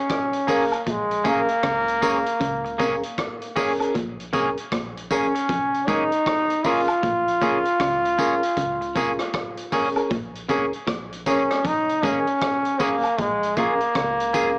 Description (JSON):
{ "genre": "roots reggae", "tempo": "78 BPM", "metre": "4/4", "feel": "swing 62% on 16ths", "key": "Bb minor", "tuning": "A4 = 440 Hz", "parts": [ { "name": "bright trombone", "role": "melody", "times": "0.0-14.6 s", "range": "Ab3 to F4", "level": "-22 LUFS", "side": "equal", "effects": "cassette tape, tape echo" }, { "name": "vintage drum kit", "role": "drums", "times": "0.1-14.6 s", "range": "hi-hat, kick drum, rim click", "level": "-30 LUFS", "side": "equal", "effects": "cassette tape, tape echo" }, { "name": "semi-hollow electric guitar", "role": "accompaniment", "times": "0.5-14.5 s", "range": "Bb3 to Ab4", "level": "-26 LUFS", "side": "equal", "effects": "cassette tape, tape echo" }, { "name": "mellow reed electric piano", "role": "stabs", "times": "0.5-14.6 s", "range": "Db4 to Bb4", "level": "-26 LUFS", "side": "equal", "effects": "fast tremolo, cassette tape" }, { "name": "tambourine and woodblock", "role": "percussion", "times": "0.5-14.6 s", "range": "none", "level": "-32 LUFS", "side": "equal", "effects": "none" }, { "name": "electric guitar at the edge of break-up", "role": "riff", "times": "0.9-14.2 s", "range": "F2 to Db3", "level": "-30 LUFS", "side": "equal", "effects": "ensemble chorus, cassette tape" }, { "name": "warm sub bass", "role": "bass", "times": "0.9-14.5 s", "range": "F1 to Db2", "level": "-41 LUFS", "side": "equal", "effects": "none" } ], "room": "moderate small room reverb, RT60 0.5 s", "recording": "home recording on cassette, small speaker sound", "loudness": "-20 LUFS", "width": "side -36 dB against mid", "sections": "0.0-14.6 A section", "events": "none", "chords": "0.0 Bbm7" }